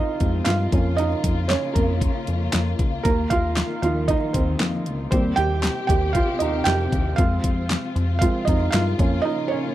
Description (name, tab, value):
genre	piano-driven pop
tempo	116 BPM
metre	4/4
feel	straight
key	unclear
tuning	A4 = 437 Hz
part	felt-muted upright piano	accompaniment	0.0-9.7 s	F3 to G5	-23 LUFS	right 3 dB	none
part	warm studio string section	sustained chords	0.0-9.7 s	C3 to G4	-30 LUFS	left 6 dB	none
part	chorused synth bass	bass	0.2-9.2 s	Db2 to G2	-24 LUFS	left 1 dB	none
part	pop drum kit	drums	0.2-9.1 s	handclaps, hi-hat, kick drum, snare drum	-23 LUFS	left 1 dB	overdrive
room	little or no reverb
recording	dry, close 1970s-style studio recording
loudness	-19 LUFS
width	side -14 dB against mid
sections	0.0-9.7 A section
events	felt piano solo 0.0-9.7; break 9.2-9.7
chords	0.0 Fm; 0.7 Bbm/F; 3.1 Ebsus2; 5.1 Eb69; 7.2 Fm; 9.0 Bbm/F